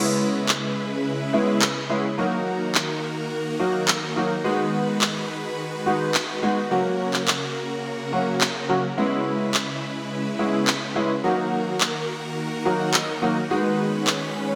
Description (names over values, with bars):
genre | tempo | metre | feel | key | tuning
dance-pop | 106 BPM | 4/4 | straight | C# dorian | A4 = 439 Hz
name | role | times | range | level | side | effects
clear concert grand piano | accompaniment | 0.0-14.1 s | F#3 to A#5 | -26 LUFS | equal | analog chorus
supersaw chords | sustained chords | 0.0-14.6 s | C#3 to B4 | -30 LUFS | equal | lush chorus
electronic handclaps | drums | 0.5-14.2 s | none | -26 LUFS | equal | gated reverb
swell | sound effects | 14.0-14.6 s | none | -33 LUFS | equal | none
room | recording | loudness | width
wet plate reverb, RT60 2.3 s | bright 1980s-style digital production | -24 LUFS | mono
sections
0.0-14.6 A section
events
grand piano fill 12.4-13.5; swell 14.0-14.6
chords
0.0 C#m7; 2.2 D#m; 4.4 G#m7; 6.7 F#; 9.0 C#m7; 11.2 D#m; 13.5 G#m7